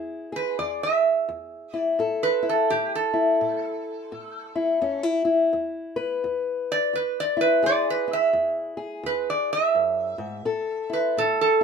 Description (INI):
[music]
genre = acoustic country blues, solo or duo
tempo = 85 BPM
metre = 4/4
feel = swing 61% on 8ths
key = E major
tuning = A4 = 440 Hz
[part]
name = fingerpicked old ladder-braced acoustic guitar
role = accompaniment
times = 0.0-11.6 s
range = E2 to B4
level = -25 LUFS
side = left 4 dB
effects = none
[part]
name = metal-body resonator slide guitar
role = melody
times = 0.4-11.6 s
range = G4 to E5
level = -23 LUFS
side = right 4 dB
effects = none
[sound]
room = moderate studio reverb, RT60 0.6 s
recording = minimal, uncompressed stereo recording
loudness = -22 LUFS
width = side -6 dB against mid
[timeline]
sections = 0.0-11.6 A section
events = resonator guitar played with a steel bar solo 0.0-11.6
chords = 0.0 E; 2.0 A5; 4.8 E; 10.5 A5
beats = 0.58 1.29 | 1.99 2.70 3.40 4.11 | 4.81 5.52 6.22 6.93 | 7.63 8.34 9.05 9.75 | 10.46 11.16